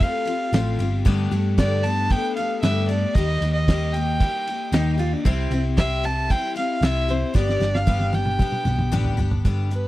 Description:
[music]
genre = folk rock and heartland rock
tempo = 114 BPM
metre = 4/4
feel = straight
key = G mixolydian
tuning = A4 = 440 Hz
[part]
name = dark fiddle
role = melody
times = 0.0-9.9 s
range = B4 to A5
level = -26 LUFS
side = right 2 dB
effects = none
[part]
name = picked twelve-string acoustic guitar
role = accompaniment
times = 0.0-9.9 s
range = G2 to G4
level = -27 LUFS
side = left 7 dB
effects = none
[part]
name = hollow-body short-scale picked electric bass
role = bass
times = 0.0-9.9 s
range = G1 to G2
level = -23 LUFS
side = right 1 dB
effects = none
[part]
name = cloth-damped thuddy drum kit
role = drums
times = 0.0-9.8 s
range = crash cymbal, hi-hat, kick drum, ride cymbal, snare drum, toms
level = -24 LUFS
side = right 1 dB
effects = none
[part]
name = electric guitar through a small old amp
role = second line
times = 4.7-5.6 s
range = C4 to F4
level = -29 LUFS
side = right 2 dB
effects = none
[sound]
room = little or no reverb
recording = dry, close 1970s-style studio recording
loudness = -19 LUFS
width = side -16 dB against mid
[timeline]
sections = 0.0-9.4 A section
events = drum fill 7.3-9.4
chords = 0.0 Fadd9; 1.1 Gadd9; 3.2 Eb; 5.3 C; 7.3 G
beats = 0.01 0.53 | 1.06 1.58 2.11 2.63 | 3.15 3.68 4.20 4.73 | 5.25 5.78 6.30 6.83 | 7.35 7.87 8.40 8.92 | 9.45

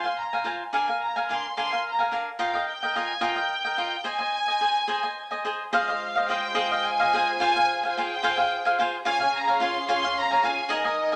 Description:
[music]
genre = mexican folk, mariachi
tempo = 72 BPM (dotted quarters)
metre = 6/8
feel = straight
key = Ab major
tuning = A4 = 440 Hz
[part]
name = dark studio violin section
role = melody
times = 0.0-11.2 s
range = Eb5 to C6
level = -29 LUFS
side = equal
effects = none
[part]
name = cavaquinho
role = accompaniment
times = 0.0-11.2 s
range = D4 to Ab5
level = -28 LUFS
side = equal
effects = none
[part]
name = warm symphonic violin section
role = sustained chords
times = 5.7-11.2 s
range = Ab3 to Ab5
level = -37 LUFS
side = equal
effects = none
[sound]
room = wet studio reverb, RT60 0.6 s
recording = none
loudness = -25 LUFS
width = mono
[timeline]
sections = 0.0-5.7 A section; 5.7-11.2 A section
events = none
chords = 0.0 Fm; 0.7 Bb7; 2.4 Ebadd9; 4.1 Ab; 5.7 Ab6; 7.4 Fm; 9.1 Db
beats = | 0.73 1.57 | 2.40 3.23 | 4.06 4.89 | 5.74 6.58 | 7.41 8.24 | 9.06 9.88 | 10.71

